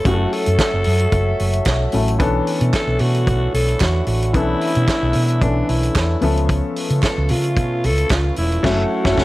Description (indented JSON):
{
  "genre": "disco",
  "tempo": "112 BPM",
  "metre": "4/4",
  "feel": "straight",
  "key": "B minor",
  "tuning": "A4 = 440 Hz",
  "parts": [
    { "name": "breathy alto saxophone", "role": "melody", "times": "0.0-9.2 s", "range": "D4 to A4", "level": "-22 LUFS", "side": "equal", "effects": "none" },
    { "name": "warm concert grand piano", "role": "accompaniment", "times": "0.0-9.2 s", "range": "E3 to E5", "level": "-23 LUFS", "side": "left 3 dB", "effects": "none" },
    { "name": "mellow French horn section", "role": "sustained chords", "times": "0.0-9.2 s", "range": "D3 to E5", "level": "-28 LUFS", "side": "equal", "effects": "none" },
    { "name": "hollow-body short-scale fingered electric bass", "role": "bass", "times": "0.1-9.2 s", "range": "E1 to C#3", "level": "-19 LUFS", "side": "equal", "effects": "none" },
    { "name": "warm soul drum kit", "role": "drums", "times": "0.1-9.2 s", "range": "crash cymbal, hi-hat, kick drum, snare drum", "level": "-22 LUFS", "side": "equal", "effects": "none" },
    { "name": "group handclap", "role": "percussion", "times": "0.6-8.2 s", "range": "none", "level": "-29 LUFS", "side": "right 7 dB", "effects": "none" }
  ],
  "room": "studio reverb",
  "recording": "none",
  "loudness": "-15 LUFS",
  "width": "side -17 dB against mid",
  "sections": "0.0-9.2 A section",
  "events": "band accent 8.6-9.2",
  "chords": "0.1 F#m7; 2.2 Bm11; 6.2 C#7alt; 8.6 F#m7"
}